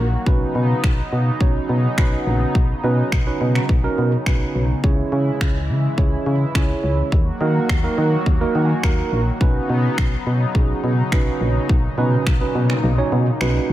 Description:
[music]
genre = dance-pop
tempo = 105 BPM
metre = 4/4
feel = straight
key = unclear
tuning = A4 = 440 Hz
[part]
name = tine electric piano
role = accompaniment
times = 0.0-13.7 s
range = A#3 to A#5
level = -24 LUFS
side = right 4 dB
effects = wide subtle chorus, sidechain pumping
[part]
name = chorused pulse-width pad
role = sustained chords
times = 0.0-13.7 s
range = A#2 to F#4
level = -26 LUFS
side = equal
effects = sidechain pumping
[part]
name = solid FM bass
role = bass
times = 0.0-13.7 s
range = A#1 to D#3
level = -20 LUFS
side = equal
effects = sidechain pumping
[part]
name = house drum kit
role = drums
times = 0.3-13.5 s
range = finger snaps, kick drum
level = -20 LUFS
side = equal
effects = none
[sound]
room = light reverb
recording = none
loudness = -16 LUFS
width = side -14 dB against mid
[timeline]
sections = 0.0-13.7 A section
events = tine electric piano fill 8.3-9.4; kick muted 12.8-13.7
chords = 0.3 Badd9; 4.8 C#m; 7.1 D#m; 9.4 Badd9

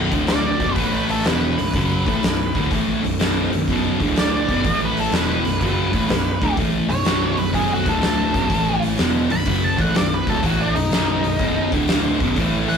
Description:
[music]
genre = blues rock power trio and southern rock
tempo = 124 BPM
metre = 4/4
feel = swing 67% on 8ths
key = unclear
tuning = A4 = 440 Hz
[part]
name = thick fuzz guitar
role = riff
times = 0.0-12.8 s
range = B1 to A3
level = -21 LUFS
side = equal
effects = distortion
[part]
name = vintage muted picked electric bass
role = bass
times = 0.0-12.8 s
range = B0 to A1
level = -27 LUFS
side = equal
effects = none
[part]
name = oversized low-tuned drum kit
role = drums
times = 0.1-12.8 s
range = hi-hat, kick drum, snare drum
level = -22 LUFS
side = equal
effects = none
[part]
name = octave-fuzz lead guitar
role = melody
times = 0.3-12.8 s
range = D4 to B5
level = -24 LUFS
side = right 1 dB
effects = distortion
[sound]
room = moderate studio reverb, RT60 0.6 s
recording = rough rehearsal-room recording, warm saturation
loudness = -17 LUFS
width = side -6 dB against mid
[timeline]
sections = 0.0-12.8 A section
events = none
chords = 0.0 D5; 0.5 B5; 0.8 A5; 1.2 B5; 3.9 D5; 4.4 B5; 4.6 A5; 5.1 B5; 7.8 D5; 8.3 B5; 8.5 A5; 9.0 B; 11.6 D5; 12.1 B5

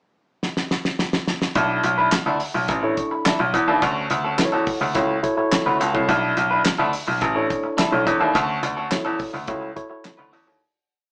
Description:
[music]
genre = early-eighties boogie funk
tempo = 106 BPM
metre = 4/4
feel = straight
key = B minor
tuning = A4 = 439 Hz
[part]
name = damped 70s drum kit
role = drums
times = 0.4-10.5 s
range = handclaps, hi-hat, kick drum, snare drum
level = -26 LUFS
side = equal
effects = none
[part]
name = clean electric guitar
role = riff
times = 1.6-10.5 s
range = C#4 to B4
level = -27 LUFS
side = equal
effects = none
[part]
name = clear baby grand piano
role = bass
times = 1.6-10.6 s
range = A1 to E2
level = -24 LUFS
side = equal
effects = none
[part]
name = tine electric piano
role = accompaniment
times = 2.8-10.6 s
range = D4 to C#6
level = -27 LUFS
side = equal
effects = none
[sound]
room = moderate studio reverb, RT60 0.7 s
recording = band playing live in one room, small speaker sound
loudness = -21 LUFS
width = mono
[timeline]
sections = 0.0-1.6 pickup bar; 1.6-10.6 verse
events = drum fill 0.4-1.6; fade-out 8.3-10.6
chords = 0.0 N.C.; 1.6 Bm11; 3.8 Dmaj7; 6.1 Bm11; 8.3 Dmaj7

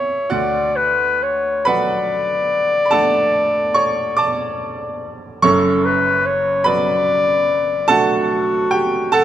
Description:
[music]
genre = classical, romantic duo for clarinet and grand piano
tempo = 48 BPM (dotted quarters)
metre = 12/8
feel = rubato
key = D major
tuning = A4 = 441 Hz
[part]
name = dark clarinet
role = melody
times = 0.0-9.2 s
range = F#4 to D5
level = -17 LUFS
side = left 2 dB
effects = none
[part]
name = bright baby grand piano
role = accompaniment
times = 0.0-9.2 s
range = E1 to D6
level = -18 LUFS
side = right 3 dB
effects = none
[sound]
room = moderate concert hall reverb, RT60 2.2 s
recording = close, detailed microphones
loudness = -15 LUFS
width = side -11 dB against mid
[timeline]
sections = 0.0-9.2 A section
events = none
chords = 0.3 D; 5.4 D/F#

